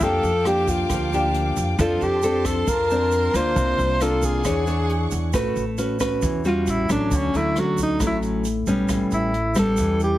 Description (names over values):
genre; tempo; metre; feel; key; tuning
bossa nova; 135 BPM; 4/4; straight; A major from 5.3 s; A4 = 440 Hz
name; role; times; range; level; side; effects
mellow alto saxophone; melody; 0.0-10.2 s; C#4 to C5; -23 LUFS; equal; none
nylon-string guitar; accompaniment; 0.0-10.2 s; A2 to C#5; -23 LUFS; left 1 dB; none
warm studio string section; sustained chords; 0.0-5.3 s; Bb3 to D6; -33 LUFS; equal; none
upright bass; bass; 0.0-10.2 s; A1 to F2; -26 LUFS; equal; none
jazz brush drum kit; drums; 0.0-10.1 s; hi-hat, kick drum, rim click; -30 LUFS; equal; none
tube shaker; percussion; 0.0-10.2 s; none; -38 LUFS; right 9 dB; none
room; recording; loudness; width
light reverb; heavily compressed radio sound; -19 LUFS; side -14 dB against mid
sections
0.0-5.3 A section; 5.3-10.2 B section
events
alto saxophone solo 5.3-10.2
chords
0.0 Gm7/F; 1.8 Bbmaj9/F; 3.6 C9sus4; 4.5 E13; 5.3 A69; 6.7 A6; 7.1 Dmaj7; 8.9 A9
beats
| 0.01 0.45 0.90 1.34 | 1.79 2.23 2.67 3.12 | 3.56 4.01 4.45 4.89 | 5.34 5.78 6.23 6.67 | 7.12 7.56 8.01 8.45 | 8.90 9.34 9.79